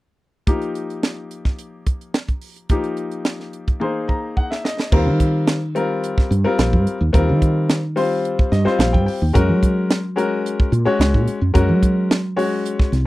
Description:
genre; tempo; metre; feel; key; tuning
electric jazz fusion; 108 BPM; 4/4; straight; Eb major; A4 = 441 Hz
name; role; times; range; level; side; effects
bright grand piano; accompaniment; 0.5-12.9 s; F3 to Bb5; -22 LUFS; left 3 dB; none
crisp fusion drum kit; drums; 0.5-13.1 s; crash cymbal, hi-hat, kick drum, snare drum, toms; -19 LUFS; right 1 dB; none
woody fretless electric bass; bass; 4.9-13.1 s; Bb1 to Gb3; -18 LUFS; right 1 dB; lush chorus
room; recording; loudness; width
little or no reverb; dry, close 1970s-style studio recording; -17 LUFS; side -18 dB against mid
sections
0.5-4.9 A section; 4.9-13.1 B section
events
drum fill 3.8-4.9; grand piano fill 3.8-4.9, 8.2-9.3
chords
0.5 F9sus4; 3.8 Bb9sus4; 4.9 Ebadd9; 9.3 Gbadd9

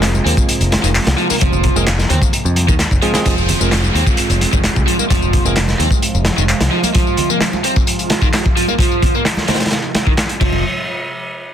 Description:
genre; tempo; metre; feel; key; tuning
breakbeat, breaks; 130 BPM; 4/4; straight; F minor; A4 = 443 Hz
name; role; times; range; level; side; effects
phased analog pad; sustained chords; 0.0-10.6 s; C3 to F4; -24 LUFS; right 1 dB; phaser, chorus, vintage 12-bit sampler grit, sidechain pumping
bell-like tine electric piano; stabs; 0.0-5.6 s; Ab3 to Ab4; -23 LUFS; right 3 dB; digital delay
modern bright picked electric bass; bass; 0.0-6.7, 10.4-10.6 s; F1 to F2; -17 LUFS; equal; none
crunchy breakbeat drum kit; drums; 0.0-10.5 s; crash cymbal, hi-hat, kick drum, snare drum; -16 LUFS; equal; none
electronic handclaps and tambourine; drums; 0.0-10.4 s; none; -23 LUFS; left 4 dB; low-pass filter on perc, low-pass filter on snare
congas; percussion; 0.1-10.6 s; none; -28 LUFS; right 2 dB; none
overdriven electric guitar; riff; 0.3-10.6 s; Eb3 to C4; -20 LUFS; equal; vintage 12-bit sampler grit, low-pass filter, digital delay
downlifter; sound effects; 3.3-6.9 s; none; -26 LUFS; equal; none
room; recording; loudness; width
light reverb, small room ambience; dense, heavily limited modern master; -12 LUFS; side -9 dB against mid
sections
0.0-3.3 A section; 3.3-10.6 B section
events
drop 0.0-3.3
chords
0.0 Fm; 10.6 N.C.

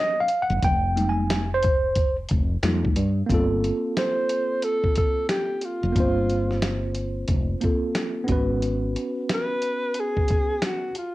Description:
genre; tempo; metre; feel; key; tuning
hip hop, jazz-hop; 90 BPM; 4/4; swing 62% on 16ths; unclear; A4 = 440 Hz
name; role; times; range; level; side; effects
mellow tine electric piano; accompaniment; 0.0-10.9 s; Gb3 to Ab5; -25 LUFS; right 1 dB; medium stereo tremolo, cassette tape
dusty soul sampler-style drum kit; drums; 0.3-11.1 s; hi-hat, kick drum, snare drum; -26 LUFS; equal; none
woody fretless electric bass; bass; 0.5-8.9 s; F1 to G2; -25 LUFS; equal; lush chorus
breathy alto saxophone; melody; 4.0-11.1 s; F4 to C5; -25 LUFS; equal; cassette tape
room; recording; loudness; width
light reverb; home recording on cassette; -21 LUFS; side -17 dB against mid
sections
0.0-3.3 A section; 3.3-11.1 B section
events
tine electric piano solo 0.0-3.3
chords
0.0 Abm11 (rootless); 0.6 Fm11; 3.3 Gm11; 8.3 Abm7

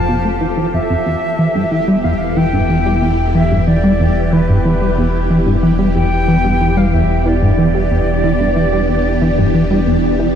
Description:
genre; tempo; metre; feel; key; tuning
ambient, sequencer-driven space music; 92 BPM; 4/4; straight; unclear; A4 = 440 Hz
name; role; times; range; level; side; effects
concert flute; melody; 0.0-10.4 s; B4 to A5; -20 LUFS; equal; ping-pong delay
phased string machine; sustained chords; 0.0-10.4 s; E3 to A4; -19 LUFS; equal; ensemble chorus, phaser
round analog bass; bass; 0.0-10.4 s; E1 to F1; -19 LUFS; equal; none
bubbling stepped-filter texture; texture; 0.0-10.4 s; G4; -31 LUFS; right 2 dB; chorus, built-in reverb
plucky analog bass; riff; 0.1-10.3 s; E2 to A3; -16 LUFS; equal; lush chorus, ping-pong delay
room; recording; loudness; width
moderate huge ambient reverb, RT60 8.2 s; dark, warm production; -12 LUFS; side -8 dB against mid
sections
0.0-10.4 A section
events
filter sweep on analog synth bass 0.0-10.4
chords
0.0 Fmaj7; 1.1 Em7

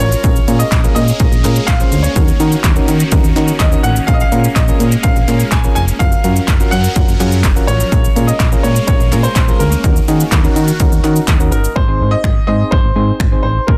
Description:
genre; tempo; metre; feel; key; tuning
dance-pop; 125 BPM; 4/4; straight; Bb minor; A4 = 440 Hz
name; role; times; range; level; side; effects
warm baby grand piano; melody; 0.0-13.8 s; Bb4 to Ab5; -23 LUFS; equal; digital delay
soft electric-piano-like synth keys; accompaniment; 0.0-13.7 s; C4 to Eb5; -23 LUFS; equal; chorus, sidechain pumping
supersaw pad; sustained chords; 0.0-11.7 s; Eb3 to Bb4; -26 LUFS; equal; phaser, sidechain pumping
solid FM bass; bass; 0.0-13.8 s; F1 to Eb3; -17 LUFS; equal; sidechain pumping
punchy analog drum machine; drums; 0.0-13.8 s; finger snaps, handclaps, hi-hat, kick drum, shaker; -16 LUFS; equal; soft clipping on snare
group handclap; percussion; 0.7-11.4 s; none; -29 LUFS; equal; none
room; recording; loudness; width
digital ambience; dense, heavily limited modern master; -13 LUFS; mono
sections
0.0-11.8 A section; 11.8-13.8 B section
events
synth keys fill 11.0-11.8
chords
0.2 Bbm7; 2.2 Ebm7; 4.1 Bbm7; 6.0 Gbmaj7; 7.9 Bbm7; 9.8 Ebm7; 11.8 Ab

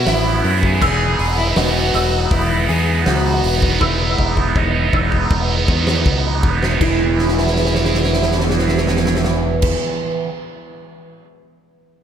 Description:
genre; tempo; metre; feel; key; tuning
post-rock; 80 BPM; 4/4; straight; E major; A4 = 441 Hz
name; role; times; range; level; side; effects
muted violin; melody; 0.0-4.9 s; E4 to G#4; -23 LUFS; left 3 dB; ping-pong delay
rich chamber string section; sustained chords; 0.0-9.7 s; B2 to F#4; -28 LUFS; left 5 dB; none
overdriven electric guitar; riff; 0.0-10.3 s; E3 to G#4; -20 LUFS; right 5 dB; phaser
modern bright fingered electric bass; bass; 0.0-9.7 s; E1 to F#2; -19 LUFS; left 1 dB; none
huge arena drum kit; drums; 0.1-11.3 s; crash cymbal, hi-hat, kick drum, snare drum; -20 LUFS; equal; none
felt-muted upright piano; arpeggios; 0.8-9.8 s; E4 to E6; -25 LUFS; right 1 dB; ensemble chorus, ping-pong delay
room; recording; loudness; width
moderate church reverb, RT60 3.8 s; dreamy mix soaked in reverb; -14 LUFS; side -8 dB against mid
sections
0.0-6.8 A section; 6.8-9.8 B section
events
drum fill 3.8-6.8, 7.2-9.6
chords
0.0 Bsus4; 0.8 Emaj7; 6.8 E

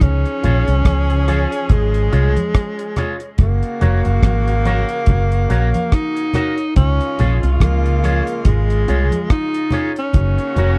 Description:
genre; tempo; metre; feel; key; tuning
roots reggae; 71 BPM; 4/4; swing 57% on 16ths; Db major; A4 = 442 Hz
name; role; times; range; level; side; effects
breathy tenor saxophone; melody; 0.0-10.8 s; Ab3 to Eb4; -24 LUFS; equal; tape echo
warm horn section; second line; 0.0-10.8 s; Db3 to Ab4; -31 LUFS; equal; tape echo
mellow electric guitar; riff; 0.0-10.7 s; F2 to Db3; -27 LUFS; equal; none
vintage muted fingered electric bass; bass; 0.0-10.8 s; F1 to Db2; -18 LUFS; equal; none
deep reggae drum kit; drums; 0.0-10.8 s; hi-hat, kick drum, rim click; -17 LUFS; equal; none
congas; percussion; 0.0-10.8 s; none; -27 LUFS; equal; none
electric guitar with an envelope filter; accompaniment; 0.4-10.8 s; Db4 to Db5; -32 LUFS; equal; tape echo
reed electric piano; stabs; 0.4-10.8 s; F4 to Db5; -30 LUFS; equal; overdrive
room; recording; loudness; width
little or no reverb; dry, close 1970s-style studio recording; -17 LUFS; mono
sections
0.0-10.8 A section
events
none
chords
0.0 Db; 3.4 Gb; 6.8 Db; 10.1 Gb

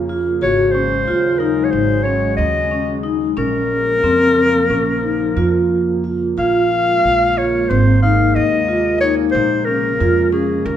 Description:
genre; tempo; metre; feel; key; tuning
contemporary instrumental, chamber music in an uneven meter; 182 BPM (eighths); 9/8; straight; Bb minor; A4 = 440 Hz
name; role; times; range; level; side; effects
warbly tape-like pad; sustained chords; 0.0-10.8 s; C3 to Bb3; -24 LUFS; equal; chorus, built-in reverb
upright bass; bass; 0.0-10.8 s; Ab1 to F2; -22 LUFS; right 3 dB; none
vibraphone with medium mallets; arpeggios; 0.1-10.8 s; C4 to Gb4; -18 LUFS; left 1 dB; none
mellow clarinet; melody; 0.4-10.8 s; Ab4 to F5; -17 LUFS; left 2 dB; none
room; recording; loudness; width
moderate recital hall reverb, RT60 1.4 s; minimal, uncompressed stereo recording; -14 LUFS; side -10 dB against mid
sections
0.0-6.4 A section; 6.4-10.8 B section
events
none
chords
0.4 Ab7sus4; 3.4 Bbm; 6.4 Bbm7; 7.7 Abadd9; 9.3 Bbm7

